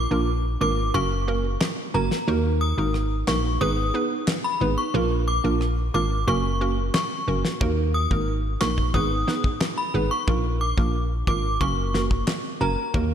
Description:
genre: dancehall.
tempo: 90 BPM.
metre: 4/4.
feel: straight.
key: unclear.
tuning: A4 = 440 Hz.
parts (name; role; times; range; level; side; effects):
synth chime; melody; 0.0-12.7 s; Bb5 to Eb6; -28 LUFS; left 1 dB; ensemble chorus, tremolo, diffuse ambient delay.
hollow square pluck; accompaniment; 0.0-13.1 s; Bb3 to Cb5; -27 LUFS; right 3 dB; chorus.
solid FM bass; bass; 0.0-13.1 s; Gb1 to Eb2; -24 LUFS; equal; none.
damped 70s drum kit; drums; 1.6-13.1 s; handclaps, kick drum, rim click, snare drum; -26 LUFS; left 1 dB; none.
room: moderate lush hall reverb, RT60 1.9 s, small room ambience.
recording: dreamy mix soaked in reverb.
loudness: -21 LUFS.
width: side -9 dB against mid.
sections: 0.0-13.1 A section.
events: break 0.0-7.6.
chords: 0.0 Bb; 0.9 Gb; 2.3 Ebm; 3.6 Abm; 4.9 Bb; 6.3 Gb; 7.6 Ebm; 8.9 Abm; 10.3 Bb; 11.6 Gb.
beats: 0.28 0.94 1.61 | 2.28 2.94 3.61 4.28 | 4.94 5.61 6.28 6.94 | 7.61 8.28 8.94 9.61 | 10.28 10.94 11.61 12.28 | 12.94.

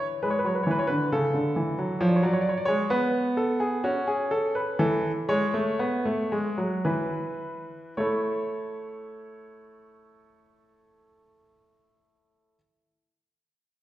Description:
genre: classical, baroque-style two-part invention for grand piano.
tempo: 52-68 BPM.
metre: 3/4.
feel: straight.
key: A major.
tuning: A4 = 440 Hz.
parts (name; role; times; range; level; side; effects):
warm grand piano; solo; 0.0-12.6 s; C#3 to D5; -24 LUFS; equal; none.
room: wet recital hall reverb, RT60 1.6 s.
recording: heard from further back in the room.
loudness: -24 LUFS.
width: side -14 dB against mid.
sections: 0.0-8.0 A section; 8.0-11.4 B section.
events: slowing down 0.7-8.0.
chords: 0.0 E7; 1.1 A/C#; 2.0 C#7(no3); 3.8 F#m/C#; 4.8 A/E; 6.8 E5; 8.0 A.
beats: 0.21 1.10 | 1.99 2.90 3.83 | 4.79 5.79 6.85 | 7.97 9.11 10.26.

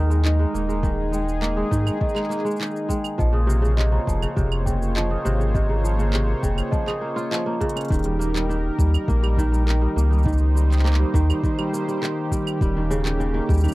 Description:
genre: folktronica.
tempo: 102 BPM.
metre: 4/4.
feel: straight.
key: Eb mixolydian.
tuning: A4 = 438 Hz.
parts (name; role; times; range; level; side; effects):
large celesta; second line; 0.0-7.9 s; Eb5 to Eb6; -31 LUFS; equal; tape echo.
warm analog pad; sustained chords; 0.0-13.7 s; Eb3 to Db5; -30 LUFS; right 1 dB; chorus, tremolo.
kora; arpeggios; 0.0-13.7 s; C3 to F4; -26 LUFS; equal; tape echo.
warm sub bass; bass; 0.0-13.7 s; Eb1 to Ab2; -20 LUFS; equal; none.
organic electronic drum kit; drums; 0.1-13.7 s; claves, handclaps, hi-hat, shaker; -32 LUFS; right 2 dB; overdrive.
electronic kick drum; drums; 0.8-13.6 s; none; -24 LUFS; equal; overdrive.
room: little or no reverb.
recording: dry, close 1970s-style studio recording.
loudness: -19 LUFS.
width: side -19 dB against mid.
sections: 0.0-7.9 A section; 7.9-13.7 B section.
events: band accent 7.3; drum fill 7.6.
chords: 0.0 Absus2; 3.2 Bbmadd9; 7.9 Eb; 12.6 Eb7.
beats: 0.25 | 0.84 1.43 2.02 2.61 | 3.19 3.78 4.37 4.96 | 5.55 6.14 6.72 7.31 | 7.90 8.49 9.08 9.66 | 10.25 10.84 11.43 12.02 | 12.61 13.19.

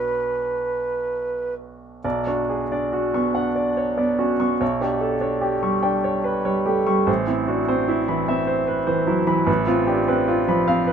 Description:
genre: classical, impressionist duo for flute and grand piano.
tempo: 39-51 BPM (dotted quarters).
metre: 6/8.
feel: rubato.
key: unclear.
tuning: A4 = 437 Hz.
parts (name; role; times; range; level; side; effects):
mellow concert flute; melody; 0.0-1.5 s; B4; -23 LUFS; right 2 dB; none.
bright grand piano; accompaniment; 0.0-10.9 s; A1 to C#6; -20 LUFS; right 1 dB; none.
room: light reverb.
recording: minimal, uncompressed stereo recording.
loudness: -19 LUFS.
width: side -7 dB against mid.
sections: 0.0-2.0 A section; 2.0-10.9 B section.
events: none.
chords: 0.0 Bmadd9; 4.6 G/B; 7.1 Amadd9; 9.5 F/A.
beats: 0.59 | 2.04 3.35 | 4.61 5.84 | 7.08 8.28 | 9.48 10.69.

